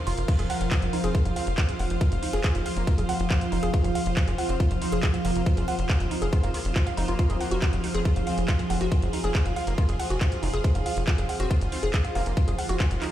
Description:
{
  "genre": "psychedelic trance",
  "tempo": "139 BPM",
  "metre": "4/4",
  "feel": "straight",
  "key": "F minor",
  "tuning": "A4 = 440 Hz",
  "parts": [
    { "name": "evolving wavetable pad", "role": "sustained chords", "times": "0.0-13.1 s", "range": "F3 to Bb4", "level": "-32 LUFS", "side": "right 1 dB", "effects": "chorus, built-in reverb, sidechain pumping" },
    { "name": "granular cloud pad", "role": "texture", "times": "0.0-13.1 s", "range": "F4 to F5", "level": "-33 LUFS", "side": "right 1 dB", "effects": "built-in reverb, sidechain pumping" },
    { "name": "woody wave-folded pluck", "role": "riff", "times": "0.1-13.1 s", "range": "Eb4 to Gb5", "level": "-33 LUFS", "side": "moving between left 2 dB and right 4 dB", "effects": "chorus, auto-pan, sidechain pumping, dub echo" },
    { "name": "tight sequencer bass", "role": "bass", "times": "0.1-13.0 s", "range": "F1", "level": "-28 LUFS", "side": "equal", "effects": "tube saturation" },
    { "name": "drum and bass drum kit", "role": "drums", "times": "0.1-13.1 s", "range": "crash cymbal, handclaps, hi-hat", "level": "-35 LUFS", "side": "equal", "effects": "none" },
    { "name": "electronic kick drum", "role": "drums", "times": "0.3-12.9 s", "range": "none", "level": "-23 LUFS", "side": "equal", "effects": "none" },
    { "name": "metallic wobble bass", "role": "second line", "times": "1.0-12.9 s", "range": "Ab3 to C4", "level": "-43 LUFS", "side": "left 2 dB", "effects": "none" }
  ],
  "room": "little or no reverb",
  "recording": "played on a big sound system in a bare room, large studio reverb",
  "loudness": "-23 LUFS",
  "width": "side -12 dB against mid",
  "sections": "0.0-13.1 A section",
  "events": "none",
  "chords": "0.0 F5"
}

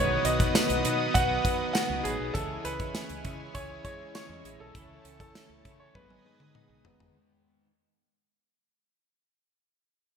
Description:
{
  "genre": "1980s-style pop",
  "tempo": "100 BPM",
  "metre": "4/4",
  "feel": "straight",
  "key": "C# minor",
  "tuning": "A4 = 440 Hz",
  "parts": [
    { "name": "bright concert grand piano", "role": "melody", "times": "0.0-6.8 s", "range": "G#4 to F#5", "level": "-32 LUFS", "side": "right 2 dB", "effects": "digital delay" },
    { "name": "cranked stack guitar", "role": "accompaniment", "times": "0.0-7.7 s", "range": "G#2 to C#4", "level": "-40 LUFS", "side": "left 1 dB", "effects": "overdrive, wide subtle chorus" },
    { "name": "mellow tine electric piano", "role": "accompaniment", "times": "0.0-7.2 s", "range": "G#2 to F#5", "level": "-35 LUFS", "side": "left 1 dB", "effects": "medium stereo tremolo" },
    { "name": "brassy analog pad", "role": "sustained chords", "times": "0.0-7.1 s", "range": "E4 to D#6", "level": "-36 LUFS", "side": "left 1 dB", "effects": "chorus" },
    { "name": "twelve-string electric guitar", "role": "riff", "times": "0.0-7.7 s", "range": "D#3 to A4", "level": "-41 LUFS", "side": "right 2 dB", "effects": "analog chorus, digital delay" },
    { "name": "mellow synth brass", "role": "stabs", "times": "0.0-7.1 s", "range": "D#3 to D#5", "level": "-40 LUFS", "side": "left 2 dB", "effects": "chorus, digital delay" },
    { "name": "woody fretless electric bass", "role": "bass", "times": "0.0-7.1 s", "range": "E1 to C#3", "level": "-36 LUFS", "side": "equal", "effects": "none" },
    { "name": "modern studio drum kit", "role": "drums", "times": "0.2-7.1 s", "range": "hi-hat, kick drum, snare drum, tambourine, toms", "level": "-30 LUFS", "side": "equal", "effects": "gated reverb" }
  ],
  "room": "moderate lush hall reverb, RT60 1.9 s, small room ambience",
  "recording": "bright 1980s-style digital production",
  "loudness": "-25 LUFS",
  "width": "side -7 dB against mid",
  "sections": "0.0-7.2 A section",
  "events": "fade-out 0.0-7.2; drum fill 6.0-7.2",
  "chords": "0.0 B; 2.4 C#m; 4.8 A/C#; 6.0 G#m"
}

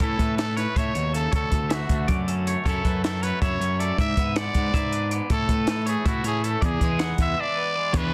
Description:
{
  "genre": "math rock and midwest emo",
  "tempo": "318 BPM (eighths)",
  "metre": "7/8",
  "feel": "straight",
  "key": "unclear",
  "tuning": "A4 = 440 Hz",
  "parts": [
    { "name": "growling trumpet", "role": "melody", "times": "0.0-8.1 s", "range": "F#4 to E5", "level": "-30 LUFS", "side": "equal", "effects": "none" },
    { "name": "twangy electric guitar", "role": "accompaniment", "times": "0.0-8.1 s", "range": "D2 to G#4", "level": "-37 LUFS", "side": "equal", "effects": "none" },
    { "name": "twangy electric guitar", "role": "arpeggios", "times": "0.0-8.1 s", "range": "A4 to F#5", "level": "-35 LUFS", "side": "equal", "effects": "lush chorus, slapback echo" },
    { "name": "fuzz picked electric bass", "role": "bass", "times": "0.0-8.1 s", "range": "D2 to A2", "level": "-29 LUFS", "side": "equal", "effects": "overdrive" },
    { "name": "compact cocktail drum kit", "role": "drums", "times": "0.0-8.0 s", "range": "hi-hat, kick drum, snare drum", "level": "-28 LUFS", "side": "equal", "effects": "soft clipping on snare" },
    { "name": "crunchy overdriven guitar", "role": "riff", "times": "7.9-8.1 s", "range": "E3 to G#4", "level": "-29 LUFS", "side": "equal", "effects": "none" }
  ],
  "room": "little or no reverb",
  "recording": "dense, heavily limited modern master",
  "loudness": "-24 LUFS",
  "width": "mono",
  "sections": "0.0-7.9 A section",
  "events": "none",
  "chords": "0.0 A; 1.3 Dmaj7; 2.7 F#m7; 4.0 E7/G#; 5.3 A; 6.6 E7"
}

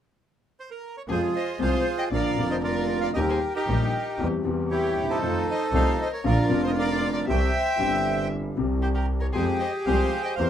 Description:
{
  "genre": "tango",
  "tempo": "116 BPM",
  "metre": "4/4",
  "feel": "rubato",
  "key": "F minor",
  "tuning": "A4 = 440 Hz",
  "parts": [
    { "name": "bandoneon", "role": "melody", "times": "0.6-10.5 s", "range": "Eb4 to G5", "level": "-27 LUFS", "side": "right 1 dB", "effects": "none" },
    { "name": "warm violin", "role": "second line", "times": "1.1-10.5 s", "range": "G4 to E5", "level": "-32 LUFS", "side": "left 2 dB", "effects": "none" },
    { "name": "warm upright piano", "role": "accompaniment", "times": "1.1-10.5 s", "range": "F1 to G4", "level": "-27 LUFS", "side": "left 2 dB", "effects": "none" },
    { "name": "clear double bass", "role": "bass", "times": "1.1-10.5 s", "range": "F1 to F2", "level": "-27 LUFS", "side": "right 1 dB", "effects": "none" }
  ],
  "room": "moderate club ambience, RT60 0.5 s",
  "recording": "minimal, uncompressed stereo recording",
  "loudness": "-22 LUFS",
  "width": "side -10 dB against mid",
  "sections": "0.0-1.1 A section; 1.1-10.5 B section",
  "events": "none",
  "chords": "0.0 N.C.; 1.1 Fm; 2.1 Bb; 3.1 Eb; 4.2 C/E; 5.2 F7; 6.2 Bb; 7.3 C; 9.3 Fmadd9"
}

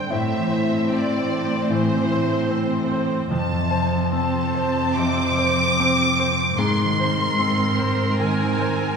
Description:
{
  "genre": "cinematic, emotional film score for orchestra",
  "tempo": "74 BPM",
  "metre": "4/4",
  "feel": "rubato",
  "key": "unclear",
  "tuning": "A4 = 441 Hz",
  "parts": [
    { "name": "rich studio violin section", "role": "melody", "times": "0.0-9.0 s", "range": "C5 to D6", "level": "-24 LUFS", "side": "left 1 dB", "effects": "none" },
    { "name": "bright concert grand piano", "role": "accompaniment", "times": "0.0-9.0 s", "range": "F2 to C5", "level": "-24 LUFS", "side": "equal", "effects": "none" },
    { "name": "rich studio viola section", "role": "accompaniment", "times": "0.0-9.0 s", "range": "C4 to C5", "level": "-28 LUFS", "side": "right 3 dB", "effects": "none" },
    { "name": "concert harp", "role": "arpeggios", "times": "0.0-9.0 s", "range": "F2 to D5", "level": "-27 LUFS", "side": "left 3 dB", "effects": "none" },
    { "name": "warm studio cello section", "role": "bass", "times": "0.0-9.0 s", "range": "F2 to A2", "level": "-27 LUFS", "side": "right 2 dB", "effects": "none" }
  ],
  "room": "wet recital hall reverb, RT60 1.7 s",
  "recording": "recorded in a church or concert hall",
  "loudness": "-18 LUFS",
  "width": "side -6 dB against mid",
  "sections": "0.0-9.0 A section",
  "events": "none",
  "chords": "0.1 Am; 3.3 F; 6.6 Abadd9"
}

